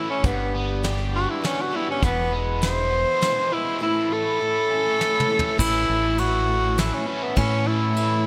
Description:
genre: folk rock and heartland rock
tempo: 101 BPM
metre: 3/4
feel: straight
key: A major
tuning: A4 = 439 Hz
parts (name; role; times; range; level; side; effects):
- warm tenor saxophone; melody; 0.0-8.3 s; B3 to C5; -25 LUFS; equal; digital delay
- picked acoustic archtop guitar; accompaniment; 0.0-8.3 s; E2 to G4; -34 LUFS; equal; analog chorus
- bright tonewheel organ; sustained chords; 0.0-8.3 s; G3 to A4; -41 LUFS; equal; none
- biting overdriven guitar; riff; 0.0-8.3 s; E2 to A4; -32 LUFS; equal; harmonic tremolo
- deep dub fingered electric bass; bass; 0.2-8.3 s; E1 to A2; -28 LUFS; equal; none
- soft brush drum kit; drums; 0.2-8.1 s; crash cymbal, hi-hat, kick drum, ride cymbal, snare drum, toms; -29 LUFS; equal; gated reverb
room: moderate lush hall reverb, RT60 1.8 s, studio ambience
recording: bright 1980s-style digital production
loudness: -22 LUFS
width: mono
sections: 0.0-5.6 A section; 5.6-8.3 B section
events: tenor saxophone solo 0.0-5.6; drum fill 5.0-5.6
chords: 0.2 G; 2.0 E; 3.8 A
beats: | 0.24 0.84 1.43 | 2.03 2.62 3.21 | 3.81 4.40 5.00 | 5.59 6.18 6.78 | 7.37 7.97

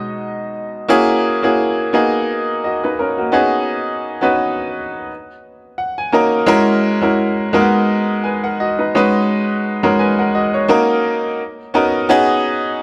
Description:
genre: soul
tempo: 86 BPM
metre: 4/4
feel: swing 54% on 16ths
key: unclear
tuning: A4 = 440 Hz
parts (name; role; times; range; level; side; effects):
- clear grand piano; solo; 0.0-12.8 s; B2 to A#5; -17 LUFS; equal; none
room: moderate plate reverb, RT60 3.0 s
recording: none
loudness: -16 LUFS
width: mono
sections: 0.9-12.1 A section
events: grand piano fill 5.4-6.5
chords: 0.0 B6; 0.9 F#9; 1.9 G#m9; 5.1 D#m7; 6.5 F#9; 7.5 G#m9; 8.9 B69; 10.7 D#m7; 11.4 Bmaj7; 12.1 B69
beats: 0.20 | 0.90 1.59 2.29 2.99 | 3.69 4.39 5.09 5.79 | 6.49 7.19 7.89 8.59 | 9.29 9.99 10.69 11.39 | 12.09 12.79

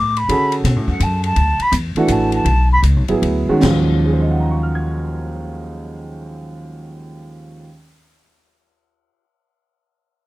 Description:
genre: modal jazz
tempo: 143-168 BPM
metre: 3/4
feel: swing 65% on 8ths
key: Eb dorian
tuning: A4 = 440 Hz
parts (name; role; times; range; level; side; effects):
- concert flute; melody; 0.0-2.8 s; F#5 to D6; -18 LUFS; equal; none
- upright bass; bass; 0.0-7.6 s; A1 to D3; -18 LUFS; equal; none
- open jazz drum kit; drums; 0.2-3.8 s; crash cymbal, hi-hat, kick drum, ride cymbal, snare drum, toms; -24 LUFS; left 1 dB; none
- warm grand piano; accompaniment; 0.3-8.0 s; Eb2 to Ab6; -19 LUFS; right 2 dB; none
room: little or no reverb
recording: dry, close 1970s-style studio recording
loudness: -14 LUFS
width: side -18 dB against mid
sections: 0.0-3.6 A section; 3.6-6.1 B section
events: flute solo 0.0-3.6; slowing down 1.4-3.6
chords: 0.0 Bm11; 3.6 Ebm11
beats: | 0.30 0.65 1.01 | 1.36 1.72 2.08 | 2.46 2.83 3.23 | 3.64 4.06 4.47 | 4.89 5.31 5.73

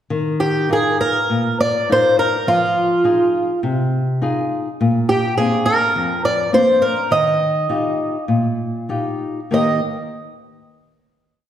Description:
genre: fado-style ballad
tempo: 103 BPM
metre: 4/4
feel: rubato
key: Eb major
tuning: A4 = 440 Hz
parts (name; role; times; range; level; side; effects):
- flamenco guitar; accompaniment; 0.1-9.8 s; F2 to Bb4; -20 LUFS; left 2 dB; none
- fingerpicked twelve-string acoustic guitar; melody; 0.4-9.8 s; F4 to Eb5; -16 LUFS; right 1 dB; none
room: wet scoring stage reverb, RT60 1.5 s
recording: heard from further back in the room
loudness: -15 LUFS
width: side -10 dB against mid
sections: 0.1-9.5 A section; 9.5-11.5 final chord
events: none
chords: 0.1 Ebsus2; 2.5 Fm7; 4.8 Bbadd9; 7.1 Ebadd9; 9.5 Eb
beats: | 0.09 0.69 1.29 1.88 | 2.46 3.04 3.62 4.20 | 4.79 5.37 5.94 6.52 | 7.10 7.68 8.27 8.89 | 9.51

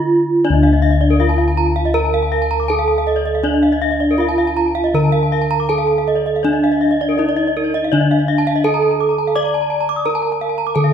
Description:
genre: Balinese gamelan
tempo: 81 BPM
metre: 4/4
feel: uneven beats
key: D pelog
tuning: A4 = 441 Hz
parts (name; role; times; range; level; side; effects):
- gamelan-type bronze metallophone; melody; 0.0-10.9 s; D4 to D5; -17 LUFS; right 1 dB; none
- gamelan-type bossed gongs; bass; 0.0-10.9 s; D2 to D5; -19 LUFS; left 1 dB; none
- gamelan-type bronze metallophone; arpeggios; 0.4-10.9 s; Bb4-20c to Eb6+20c; -22 LUFS; left 6 dB; none
- gamelan-type bronze metallophone; arpeggios; 0.6-10.8 s; Bb4-20c to D6; -23 LUFS; right 4 dB; none
room: wet recital hall reverb, RT60 1.5 s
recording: minimal, uncompressed stereo recording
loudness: -14 LUFS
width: side -8 dB against mid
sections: 0.0-10.9 A section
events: break 0.0-0.4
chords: none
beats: | 0.44 1.19 1.94 2.69 | 3.44 4.19 4.94 5.69 | 6.44 7.19 7.92 8.64 | 9.36 10.06 10.75

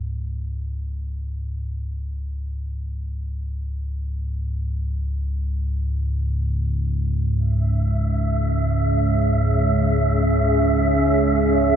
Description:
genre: dark ambient drone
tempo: free time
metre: none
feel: none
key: C# minor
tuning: A4 = 444 Hz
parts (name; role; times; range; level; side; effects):
- deep rumbling drone; drone; 0.0-11.8 s; C#2 to G#2; -22 LUFS; equal; built-in reverb
- deep dark ambient pad; sustained chords; 8.2-11.8 s; C#4 to C#5; -22 LUFS; equal; chorus, built-in reverb
- wind-like tuned noise texture; texture; 7.8-11.8 s; E5; -24 LUFS; right 3 dB; built-in reverb
room: wet echo chamber reverb, RT60 2.1 s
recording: none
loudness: -20 LUFS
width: side -8 dB against mid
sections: 0.0-11.8 A section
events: none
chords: 0.0 C#5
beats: free time

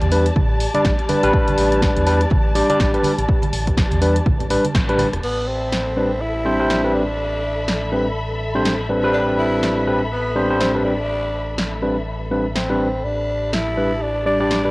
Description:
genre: deep house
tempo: 123 BPM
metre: 4/4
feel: swing 59% on 16ths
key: A minor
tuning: A4 = 440 Hz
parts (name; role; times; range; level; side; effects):
- smooth gliding synth bass; bass; 0.0-14.7 s; E1 to E2; -24 LUFS; equal; transformer saturation, sidechain pumping
- punchy analog drum machine; drums; 0.0-14.6 s; crash cymbal, hi-hat, rim click, snare drum; -26 LUFS; equal; cassette tape
- congas; percussion; 0.0-5.1 s; none; -28 LUFS; right 4 dB; none
- dark symphonic string section; texture; 0.0-14.7 s; G4 to B5; -27 LUFS; left 1 dB; sidechain pumping, cassette tape
- overdriven tine electric piano; stabs; 0.1-14.7 s; G3 to D5; -19 LUFS; equal; sidechain pumping, cassette tape, analog delay
- electronic kick drum; drums; 0.4-4.9 s; none; -19 LUFS; equal; cassette tape
- growling tenor saxophone; melody; 5.2-14.7 s; B3 to E4; -24 LUFS; equal; cassette tape
room: moderate spring reverb, RT60 1.9 s, digital ambience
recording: home recording on cassette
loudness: -16 LUFS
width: side -23 dB against mid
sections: 0.0-5.2 A section; 5.2-14.7 B section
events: band accent 4.7; drum fill 5.0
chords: 0.0 G/A; 5.2 Am11; 13.0 G/A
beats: 0.36 0.85 | 1.33 1.82 2.31 2.80 | 3.29 3.77 4.26 4.75 | 5.24 5.72 6.21 6.70 | 7.19 7.68 8.16 8.65 | 9.14 9.63 10.12 10.60 | 11.09 11.58 12.07 12.55 | 13.04 13.53 14.02 14.51

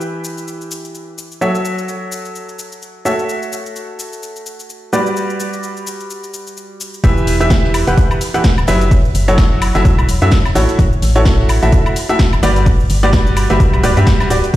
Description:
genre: piano house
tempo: 128 BPM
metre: 4/4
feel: swing 57% on 16ths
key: E dorian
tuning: A4 = 441 Hz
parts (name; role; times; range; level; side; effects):
- bright baby grand piano; riff; 0.0-14.5 s; E3 to G5; -17 LUFS; equal; sidechain pumping, digital delay
- house drum kit; drums; 0.0-14.6 s; hi-hat, shaker, snare drum, woodblock; -24 LUFS; left 1 dB; none
- organ-like FM bass; bass; 7.0-14.6 s; D1 to G2; -15 LUFS; equal; tube saturation, sidechain pumping
- electronic kick drum; drums; 7.0-14.6 s; none; -13 LUFS; equal; none
- swinging big-band drum kit; drums; 7.0-14.6 s; hi-hat, snare drum; -32 LUFS; right 1 dB; high-pass filter on hats, high-pass filter on snare, high-pass filter on room
room: studio reverb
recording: played on a big sound system in a bare room, stone room reverb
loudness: -11 LUFS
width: side -15 dB against mid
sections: 0.0-7.0 A section; 7.0-14.6 B section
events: drop 7.0-14.6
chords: 0.0 Em; 1.4 F#m7; 3.1 A6; 4.9 Gmaj7; 7.0 Em; 8.9 F#m7; 10.6 A6; 12.4 Gmaj7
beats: 0.01 0.47 0.94 | 1.41 1.88 2.35 2.82 | 3.29 3.76 4.22 4.69 | 5.16 5.63 6.10 6.57 | 7.04 7.51 7.97 8.44 | 8.91 9.38 9.85 10.32 | 10.79 11.26 11.72 12.19 | 12.66 13.13 13.60 14.07 | 14.54

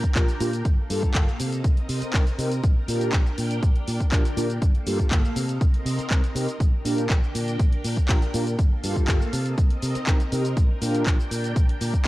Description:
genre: filtered disco house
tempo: 121 BPM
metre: 4/4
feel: straight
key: Bb major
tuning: A4 = 439 Hz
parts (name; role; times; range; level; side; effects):
- string machine, full ensemble; sustained chords; 0.0-12.1 s; Bb3 to G5; -34 LUFS; equal; ensemble chorus, sidechain pumping, low-pass filter
- fingered electric bass; bass; 0.0-12.1 s; G1 to C3; -28 LUFS; equal; sidechain pumping, low-pass filter
- electronic kick drum; drums; 0.0-12.1 s; none; -20 LUFS; equal; overdrive, small room ambience
- house drum kit; drums; 0.0-12.1 s; handclaps, hi-hat, shaker; -31 LUFS; equal; overdrive, sidechain pumping on hats, small room ambience, sidechain pumping on cymbals, sidechain pumping on perc
- mellow synth brass; accompaniment; 0.2-12.1 s; Bb3 to Bb4; -28 LUFS; right 1 dB; chorus, phaser, sidechain pumping, low-pass filter
room: digital ambience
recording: dry, gritty hardware recording, cassette tape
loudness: -21 LUFS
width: side -18 dB against mid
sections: 0.0-12.1 A section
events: none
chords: 0.0 Bb6; 0.7 Gm9; 1.4 Cm7; 2.6 Bb6; 4.6 Gm9; 5.4 Cm7; 6.6 Bb6; 8.6 Gm9; 9.3 Cm7; 10.6 Bb6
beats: 0.16 | 0.65 1.15 1.65 2.14 | 2.64 3.13 3.63 4.12 | 4.62 5.12 5.61 6.11 | 6.60 7.10 7.60 8.09 | 8.59 9.08 9.58 10.07 | 10.57 11.07 11.56 12.06

